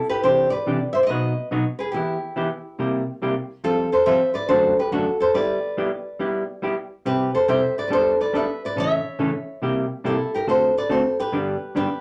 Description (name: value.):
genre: country.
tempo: 141 BPM.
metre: 4/4.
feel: swing 67% on 8ths.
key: C major.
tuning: A4 = 439 Hz.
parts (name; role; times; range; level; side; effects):
flamenco guitar; melody; 0.0-12.0 s; E4 to E5; -23 LUFS; equal; none.
hollow-body jazz guitar; accompaniment; 0.2-11.9 s; F#2 to A4; -26 LUFS; equal; none.
room: wet studio ambience, RT60 0.5 s.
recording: none.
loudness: -22 LUFS.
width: mono.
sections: 0.2-12.0 A section.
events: none.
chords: 0.2 Cadd9; 1.1 B; 1.9 Em; 2.8 C7; 3.6 Fadd9; 4.5 D/F#; 5.3 G6; 7.1 C; 7.9 Gadd9; 8.8 A; 9.6 C7; 10.5 D7; 11.3 G.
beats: | 0.24 0.66 1.09 1.51 | 1.94 2.37 2.79 3.22 | 3.64 4.07 4.50 4.92 | 5.35 5.78 6.20 6.63 | 7.06 7.48 7.91 8.34 | 8.76 9.19 9.62 10.04 | 10.47 10.90 11.32 11.75.